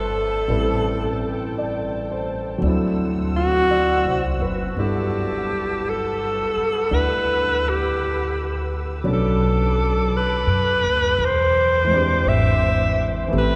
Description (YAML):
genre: jazz ballad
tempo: 56 BPM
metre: 4/4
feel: swing 67% on 8ths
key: G major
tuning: A4 = 441 Hz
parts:
  - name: warm alto saxophone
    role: melody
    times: 0.0-13.6 s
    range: F#4 to E5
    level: -24 LUFS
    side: equal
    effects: none
  - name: warm grand piano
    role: accompaniment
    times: 0.0-13.6 s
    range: E3 to F#5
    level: -28 LUFS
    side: equal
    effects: none
  - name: muted studio string section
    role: sustained chords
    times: 0.0-13.6 s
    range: C4 to E6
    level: -36 LUFS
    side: equal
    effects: none
  - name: upright bass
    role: bass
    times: 0.0-13.6 s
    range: F#1 to F#2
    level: -26 LUFS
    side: equal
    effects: none
room: wet cathedral reverb, RT60 7.5 s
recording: recorded in a church or concert hall, nothing above 10.9 kHz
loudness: -21 LUFS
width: mono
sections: 0.0-4.8 A section; 4.8-13.6 B section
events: alto saxophone solo 0.0-4.8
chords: 0.5 Am7; 2.6 D9; 4.8 Gmaj13; 9.0 Bm7; 11.2 E7alt